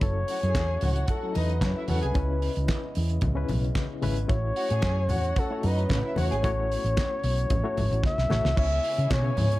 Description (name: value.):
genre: disco.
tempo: 112 BPM.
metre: 4/4.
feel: straight.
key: C# minor.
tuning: A4 = 441 Hz.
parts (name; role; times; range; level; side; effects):
breathy flugelhorn; melody; 0.0-9.6 s; A4 to E5; -30 LUFS; left 2 dB; none.
reed electric piano; accompaniment; 0.0-9.6 s; C#3 to C#5; -34 LUFS; left 4 dB; fast tremolo.
warm French horn section; sustained chords; 0.0-9.6 s; C#3 to D#5; -40 LUFS; right 2 dB; none.
hollow-body short-scale fingered electric bass; bass; 0.0-9.6 s; F#1 to C#3; -26 LUFS; equal; none.
damped 70s drum kit; drums; 0.0-9.6 s; crash cymbal, handclaps, hi-hat, kick drum, snare drum; -29 LUFS; right 1 dB; none.
congas; percussion; 0.0-9.5 s; none; -34 LUFS; left 2 dB; none.
dark studio string section; second line; 0.3-9.6 s; C#4 to G#5; -36 LUFS; right 1 dB; none.
room: studio reverb.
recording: dark, warm production.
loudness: -24 LUFS.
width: side -17 dB against mid.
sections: 0.0-8.6 A section; 8.6-9.6 B section.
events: drum fill 8.0-8.6.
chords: 0.0 F#m7; 2.2 C#m7; 4.3 A6; 8.6 C#m7.